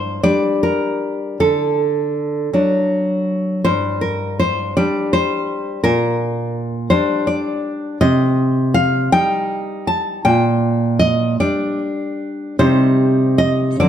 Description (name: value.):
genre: romantic piece for solo classical guitar.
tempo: 46-57 BPM (dotted quarters).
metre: 6/8.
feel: rubato.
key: G minor.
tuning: A4 = 442 Hz.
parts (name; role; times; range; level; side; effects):
nylon-string guitar; solo; 0.0-13.9 s; G2 to A5; -15 LUFS; equal; none.
room: moderate recital hall reverb, RT60 1.5 s.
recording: none.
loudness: -15 LUFS.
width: side -9 dB against mid.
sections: 0.0-13.9 A section.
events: none.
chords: 0.0 Gm; 1.4 D; 3.6 G5; 5.8 Gm/Bb; 8.0 Cm; 10.2 Gm/Bb; 12.6 Cm.